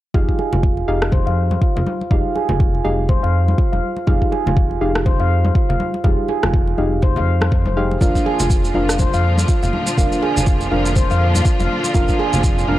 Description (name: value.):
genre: afro house.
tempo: 122 BPM.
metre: 4/4.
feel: swing 58% on 16ths.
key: F dorian.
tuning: A4 = 439 Hz.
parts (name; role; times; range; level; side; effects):
handpan; arpeggios; 0.1-12.5 s; F4 to F5; -23 LUFS; right 2 dB; sidechain pumping, low-pass filter, analog delay.
deep mellow chord stab; stabs; 0.1-12.8 s; D4 to F5; -24 LUFS; left 1 dB; chorus, sidechain pumping, analog delay.
smooth synth bass; bass; 0.1-12.8 s; F1 to F2; -20 LUFS; equal; sidechain pumping.
electronic kick drum; drums; 0.1-12.6 s; none; -17 LUFS; equal; none.
congas; percussion; 0.1-12.8 s; none; -26 LUFS; left 1 dB; none.
electronic rim click; drums; 1.0-1.1, 5.0-9.0 s; none; -26 LUFS; equal; none.
rich studio string section; sustained chords; 8.0-12.8 s; Bb2 to F4; -24 LUFS; left 1 dB; sidechain pumping.
maracas; percussion; 8.0-12.7 s; none; -28 LUFS; right 2 dB; none.
room: small room reverb.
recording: dry, gritty hardware recording, cassette tape.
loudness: -15 LUFS.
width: side -15 dB against mid.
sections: 0.1-12.8 A section.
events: filter sweep on handpan 0.1-12.8.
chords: 0.1 Fm9; 8.0 Bb/F.